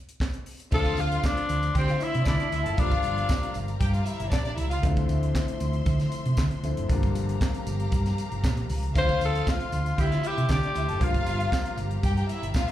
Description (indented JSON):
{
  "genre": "disco",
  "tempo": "117 BPM",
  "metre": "4/4",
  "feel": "straight",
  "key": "D minor",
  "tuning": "A4 = 440 Hz",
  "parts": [
    { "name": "tight funk drum kit", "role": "drums", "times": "0.1-12.7 s", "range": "crash cymbal, handclaps, hi-hat, kick drum, snare drum", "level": "-28 LUFS", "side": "equal", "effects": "none" },
    { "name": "raspy tenor saxophone", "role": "melody", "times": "0.7-3.6, 9.0-11.8 s", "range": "C4 to C5", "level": "-29 LUFS", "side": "left 1 dB", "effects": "slapback echo" },
    { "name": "warm studio string section", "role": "second line", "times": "0.7-4.8, 9.0-12.7 s", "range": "D4 to A5", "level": "-33 LUFS", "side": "left 1 dB", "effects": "slapback echo" },
    { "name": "clear grand piano", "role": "accompaniment", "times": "0.7-12.7 s", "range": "D3 to F4", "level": "-34 LUFS", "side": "left 6 dB", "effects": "slapback echo" },
    { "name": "clear studio string section", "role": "sustained chords", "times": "0.7-12.7 s", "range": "F3 to C6", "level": "-40 LUFS", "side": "left 2 dB", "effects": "none" },
    { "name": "hollow-body short-scale fingered electric bass", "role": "bass", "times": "0.7-12.7 s", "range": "F#1 to D3", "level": "-27 LUFS", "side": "right 1 dB", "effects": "none" },
    { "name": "tambourine", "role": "percussion", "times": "0.7-12.7 s", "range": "none", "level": "-49 LUFS", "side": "right 4 dB", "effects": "none" }
  ],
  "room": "studio reverb",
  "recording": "live gig heard through the venue's PA, club reverb",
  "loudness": "-23 LUFS",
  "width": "side -12 dB against mid",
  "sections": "0.7-12.7 A section",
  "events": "none",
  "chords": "0.0 N.C.; 0.7 Dm9; 2.8 Gm7; 4.8 Dm9; 6.9 Gm7; 9.0 Dm9; 11.0 Gm7",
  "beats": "0.20 | 0.72 1.24 1.75 2.27 | 2.78 3.29 3.81 4.32 | 4.84 5.35 5.87 6.38 | 6.89 7.41 7.92 8.44 | 8.95 9.47 9.98 10.49 | 11.01 11.52 12.03 12.54"
}